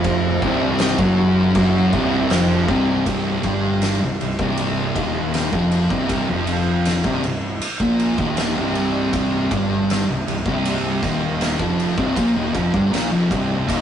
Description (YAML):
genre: stoner and doom metal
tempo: 79 BPM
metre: 4/4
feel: straight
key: unclear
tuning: A4 = 440 Hz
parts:
  - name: fuzz guitar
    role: riff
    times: 0.0-3.1 s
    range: C2 to F#3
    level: -25 LUFS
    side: right 1 dB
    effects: distortion
  - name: thick fuzz guitar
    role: riff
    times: 0.0-13.8 s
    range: C2 to Bb3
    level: -22 LUFS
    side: left 5 dB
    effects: distortion
  - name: thick fuzz guitar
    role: riff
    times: 0.0-13.8 s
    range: C2 to Bb3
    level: -21 LUFS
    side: right 4 dB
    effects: distortion
  - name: fuzz fingered electric bass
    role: bass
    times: 0.0-13.8 s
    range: C1 to Bb1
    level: -26 LUFS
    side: equal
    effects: overdrive
  - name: oversized low-tuned drum kit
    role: drums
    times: 0.0-13.8 s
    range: crash cymbal, kick drum, ride cymbal, snare drum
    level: -25 LUFS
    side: equal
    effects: none
room: moderate stone room reverb, RT60 0.9 s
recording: rough rehearsal-room recording, warm saturation, nothing above 10.7 kHz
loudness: -17 LUFS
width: side -9 dB against mid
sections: 0.0-3.1 A section; 3.1-13.8 B section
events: none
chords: 0.0 N.C.; 3.1 Cm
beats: | 0.05 0.81 1.56 2.32 | 3.07 3.83 4.58 5.34 | 6.10 6.86 7.62 8.38 | 9.14 9.90 10.66 11.42 | 12.18 12.94 13.70